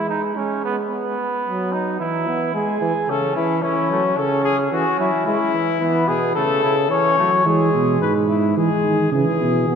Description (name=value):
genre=classical, imitative canzona for brass ensemble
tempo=110 BPM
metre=4/4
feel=straight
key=unclear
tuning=A4 = 440 Hz
part: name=mellow trumpet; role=second line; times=0.0-7.3 s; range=A3 to G#4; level=-24 LUFS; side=right 3 dB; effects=none
part: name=warm trombone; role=accompaniment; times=0.0-9.8 s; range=B2 to B3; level=-22 LUFS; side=right 2 dB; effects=none
part: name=mellow trumpet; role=melody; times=3.1-9.8 s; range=C#4 to C#5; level=-20 LUFS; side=left 5 dB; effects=none
part: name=mellow tuba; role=bass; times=7.5-9.8 s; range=G#2 to E3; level=-19 LUFS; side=right 3 dB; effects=none
room=wet church reverb, RT60 3.0 s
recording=none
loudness=-17 LUFS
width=side -7 dB against mid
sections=0.0-9.8 A section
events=none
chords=0.0 N.C.; 0.9 B; 2.0 E; 3.1 A/C#; 5.3 E; 6.4 A/C#; 7.5 E